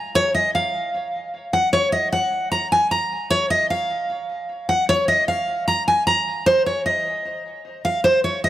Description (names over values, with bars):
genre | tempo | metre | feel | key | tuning
hip hop | 152 BPM | 4/4 | half-time | Eb dorian | A4 = 441 Hz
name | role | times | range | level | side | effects
fingerpicked steel-string acoustic guitar | melody | 0.0-8.5 s | C5 to Bb5 | -18 LUFS | equal | tape echo
room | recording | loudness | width
light reverb, small room ambience | dry, gritty hardware recording | -18 LUFS | side -13 dB against mid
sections
0.0-3.3 A section; 3.3-8.5 A section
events
none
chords
none